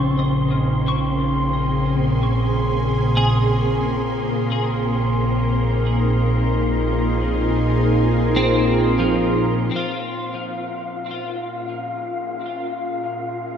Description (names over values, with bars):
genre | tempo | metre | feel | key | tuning
ambient | free time | none | none | Bb minor | A4 = 440 Hz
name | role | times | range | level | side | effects
ethereal airy pad | sustained chords | 0.0-13.6 s | Bb2 to Bb4 | -20 LUFS | equal | ensemble chorus, built-in reverb
twelve-string electric guitar | arpeggios | 0.0-12.1 s | Db3 to Db6 | -25 LUFS | equal | ensemble chorus, ping-pong delay
warm sub bass | bass | 0.0-9.7 s | Bb1 | -28 LUFS | equal | none
wind-like tuned noise texture | texture | 0.0-13.6 s | C4 to C6 | -26 LUFS | equal | built-in reverb
room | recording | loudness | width
wet plate reverb, RT60 3.1 s | dreamy mix soaked in reverb | -18 LUFS | side -8 dB against mid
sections
0.0-9.8 A section; 9.8-13.6 B section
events
none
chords
0.0 Bbm7; 4.4 Ab69/Bb; 9.8 Bbm7